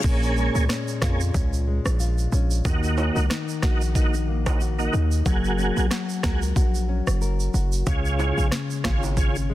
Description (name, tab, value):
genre	dancehall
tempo	92 BPM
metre	4/4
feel	swing 56% on 16ths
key	Bb minor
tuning	A4 = 440 Hz
part	tonewheel organ	accompaniment	0.0-9.4 s	Bb3 to Ab4	-28 LUFS	right 2 dB	chorus vibrato, fast rotary speaker, sidechain pumping
part	nylon-string guitar	arpeggios	0.0-9.5 s	Bb2 to Bb4	-29 LUFS	left 5 dB	digital delay
part	hard-hitting 808-style bass	bass	0.0-9.5 s	Gb1 to F2	-23 LUFS	equal	none
part	island pop drum kit	drums	0.0-9.3 s	crash cymbal, kick drum, rim click, snare drum	-24 LUFS	equal	overdrive
part	tube shaker and timbales	percussion	0.0-9.5 s	none	-36 LUFS	right 8 dB	none
room	digital ambience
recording	dense, heavily limited modern master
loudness	-20 LUFS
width	side -15 dB against mid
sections	0.0-9.5 A section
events	break 0.0-9.5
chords	0.0 Bbm7; 2.6 Ebm; 5.3 Gbadd9; 7.9 Db